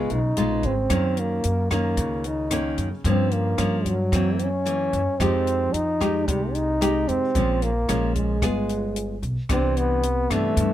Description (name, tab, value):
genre	bossa nova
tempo	112 BPM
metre	4/4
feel	straight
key	unclear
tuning	A4 = 440 Hz
part	breathy trombone	melody	0.0-10.7 s	Gb3 to Eb4	-25 LUFS	equal	none
part	nylon-string guitar	accompaniment	0.0-10.7 s	Gb2 to Ab4	-26 LUFS	left 1 dB	none
part	upright bass	bass	0.0-10.7 s	G1 to G2	-26 LUFS	equal	none
part	compact cocktail drum kit	drums	0.1-10.7 s	hi-hat, kick drum, rim click	-28 LUFS	equal	none
room	little or no reverb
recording	none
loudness	-21 LUFS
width	side -12 dB against mid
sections	0.0-9.5 A section; 9.5-10.7 B section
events	none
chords	0.0 Db7; 0.9 Gb6; 3.1 Gm7b5; 4.1 Gb7#11; 5.2 Fm9; 7.3 Bbm7; 8.4 G7b9; 9.5 Cmaj9